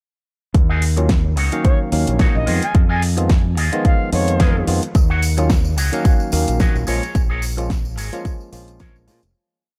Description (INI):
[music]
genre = nu-disco, nu disco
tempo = 109 BPM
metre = 4/4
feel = swing 56% on 16ths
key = Eb minor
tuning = A4 = 440 Hz
[part]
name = electric guitar with an envelope filter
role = riff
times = 0.5-9.1 s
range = Eb4 to Gb5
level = -29 LUFS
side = equal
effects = lush chorus, slapback echo
[part]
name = modern bright fingered electric bass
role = bass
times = 0.5-9.3 s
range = F1 to Bb2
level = -22 LUFS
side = equal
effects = sidechain pumping
[part]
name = electronic kick drum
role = drums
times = 0.5-8.9 s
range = none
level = -18 LUFS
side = equal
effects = overdrive
[part]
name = pop drum kit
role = drums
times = 0.5-9.3 s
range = hi-hat, snare drum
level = -28 LUFS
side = equal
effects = overdrive
[part]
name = barky tine electric piano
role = accompaniment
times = 1.0-9.2 s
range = Eb3 to F5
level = -26 LUFS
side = equal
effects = none
[part]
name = bright reedy jazz flute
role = melody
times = 1.6-4.7 s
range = Db5 to Ab5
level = -29 LUFS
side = equal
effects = tape echo
[part]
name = tambourine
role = percussion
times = 4.9-9.3 s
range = none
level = -36 LUFS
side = equal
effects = none
[sound]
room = little or no reverb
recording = none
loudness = -17 LUFS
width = mono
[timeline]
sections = 0.5-9.4 groove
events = fade-out 6.4-9.4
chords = 0.5 Ebm7; 2.5 Fm7b5; 5.0 Ebm7; 6.9 Bbm7